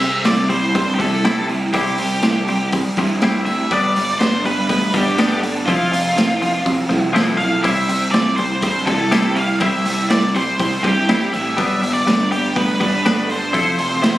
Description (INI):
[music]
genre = indie rock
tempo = 122 BPM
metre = 4/4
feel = straight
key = C major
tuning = A4 = 440 Hz
[part]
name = octave-fuzz lead guitar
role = melody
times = 0.0-14.2 s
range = F4 to F5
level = -20 LUFS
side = equal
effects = distortion
[part]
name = crunchy overdriven guitar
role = riff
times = 0.0-14.2 s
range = C3 to A4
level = -22 LUFS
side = right 3 dB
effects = ensemble chorus, tape echo
[part]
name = twelve-string electric guitar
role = riff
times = 0.0-14.2 s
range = F3 to A4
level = -21 LUFS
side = left 3 dB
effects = none
[part]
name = growling fingered electric bass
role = bass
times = 0.0-14.2 s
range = F1 to G2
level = -25 LUFS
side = right 1 dB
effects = overdrive
[part]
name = raw garage drum kit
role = drums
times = 0.0-14.1 s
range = hi-hat, kick drum, snare drum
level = -22 LUFS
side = right 1 dB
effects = none
[sound]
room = light reverb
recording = recorded on a phone in the room, studio reverb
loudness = -15 LUFS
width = side -15 dB against mid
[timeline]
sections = 0.0-14.2 A section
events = none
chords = 0.0 C; 3.7 Gadd9; 5.7 Fmaj7; 7.6 C; 11.6 Gadd9; 13.5 Fmaj7